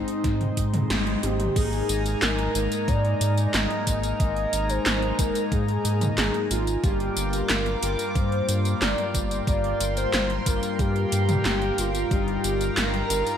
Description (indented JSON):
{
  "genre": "synthwave",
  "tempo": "91 BPM",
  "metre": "4/4",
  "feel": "straight",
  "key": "unclear",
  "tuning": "A4 = 440 Hz",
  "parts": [
    { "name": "warm velvety synth lead", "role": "melody", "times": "0.0-13.4 s", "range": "Eb4 to Eb5", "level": "-28 LUFS", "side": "right 1 dB", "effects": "chorus, digital delay" },
    { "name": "chorused pulse-width pad", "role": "sustained chords", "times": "0.0-13.4 s", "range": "Ab3 to D6", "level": "-32 LUFS", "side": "right 2 dB", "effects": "sidechain pumping" },
    { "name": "analog synth brass", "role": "stabs", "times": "0.0-13.4 s", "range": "G2 to G4", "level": "-30 LUFS", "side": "left 5 dB", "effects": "chorus" },
    { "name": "round analog bass", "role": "bass", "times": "0.0-13.2 s", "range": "G1 to Ab2", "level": "-27 LUFS", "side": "equal", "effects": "none" },
    { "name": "80s electronic pad drums", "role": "drums", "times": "0.1-13.4 s", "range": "crash cymbal, handclaps, hi-hat, snare drum, tambourine, toms", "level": "-28 LUFS", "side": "equal", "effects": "gated reverb on snare and toms, overdrive" },
    { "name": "electronic kick drum", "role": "drums", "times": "0.2-12.2 s", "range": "none", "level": "-26 LUFS", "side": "equal", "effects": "overdrive" }
  ],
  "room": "moderate plate reverb, RT60 2.8 s",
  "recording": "bright 1980s-style digital production",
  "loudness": "-22 LUFS",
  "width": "side -9 dB against mid",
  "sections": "0.0-1.6 A section; 1.6-13.4 B section",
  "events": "band accent 0.9-1.2; drum fill 1.2-1.6",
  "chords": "0.0 Ab; 1.6 Absus2; 6.8 Gm7; 12.1 Ebadd9/G"
}